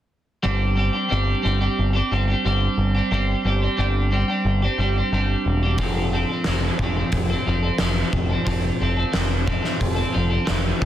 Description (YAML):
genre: quiet-loud alternative rock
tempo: 90 BPM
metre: 4/4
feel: straight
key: unclear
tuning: A4 = 437 Hz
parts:
  - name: twelve-string electric guitar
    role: arpeggios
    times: 0.4-10.9 s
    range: F3 to A4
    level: -23 LUFS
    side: right 1 dB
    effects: lush chorus
  - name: growling picked electric bass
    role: bass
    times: 0.5-10.9 s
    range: E1 to G1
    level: -22 LUFS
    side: equal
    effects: overdrive
  - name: oversized low-tuned drum kit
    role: drums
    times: 5.8-10.9 s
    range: hi-hat, kick drum, snare drum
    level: -24 LUFS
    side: equal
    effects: none
room: light reverb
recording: dense, heavily limited modern master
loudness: -19 LUFS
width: side -12 dB against mid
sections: 0.4-10.9 A section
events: none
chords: 0.4 Gsus4; 5.8 F6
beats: | 0.44 1.11 1.78 2.45 | 3.12 3.79 4.46 5.13 | 5.80 6.46 7.13 7.80 | 8.48 9.15 9.82 10.49